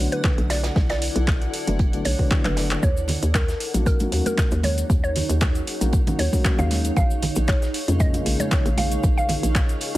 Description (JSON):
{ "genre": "deep house", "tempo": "116 BPM", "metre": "4/4", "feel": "swing 54% on 16ths", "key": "Eb minor", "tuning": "A4 = 439 Hz", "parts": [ { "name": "felt-muted upright piano", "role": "stabs", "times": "0.0-10.0 s", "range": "Db3 to Gb4", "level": "-29 LUFS", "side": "left 2 dB", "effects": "sidechain pumping, tape echo" }, { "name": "hollow knocking FM bass", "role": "bass", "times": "0.0-10.0 s", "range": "F#1 to F2", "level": "-24 LUFS", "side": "equal", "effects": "sidechain pumping" }, { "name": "granular cloud pad", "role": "texture", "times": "0.0-10.0 s", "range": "Eb4 to Gb5", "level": "-32 LUFS", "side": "right 1 dB", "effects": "built-in reverb, sidechain pumping" }, { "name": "mallet-like synth pluck", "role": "melody", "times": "0.1-9.5 s", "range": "Bb4 to F5", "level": "-29 LUFS", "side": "equal", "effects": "chorus, cassette tape, tape echo" }, { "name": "deep house drum kit", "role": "drums", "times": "0.1-10.0 s", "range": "handclaps, hi-hat", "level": "-28 LUFS", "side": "equal", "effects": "studio ambience" }, { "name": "electronic kick drum", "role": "drums", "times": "0.2-9.7 s", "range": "none", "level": "-21 LUFS", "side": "equal", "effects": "studio ambience" }, { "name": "modern studio drum kit", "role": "drums", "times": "0.2-9.9 s", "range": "hi-hat, snare drum", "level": "-37 LUFS", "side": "right 2 dB", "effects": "none" }, { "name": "cabasa", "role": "percussion", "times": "2.8-10.0 s", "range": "none", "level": "-37 LUFS", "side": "left 3 dB", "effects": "none" }, { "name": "congas", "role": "percussion", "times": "3.1-9.4 s", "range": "none", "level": "-29 LUFS", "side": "right 3 dB", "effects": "none" } ], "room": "small room ambience", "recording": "dense, heavily limited modern master", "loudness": "-19 LUFS", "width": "side -16 dB against mid", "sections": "0.0-10.0 A section", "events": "drum fill 2.4-2.8", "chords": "0.0 Bm7; 2.8 Ebm7; 7.0 Bbm7" }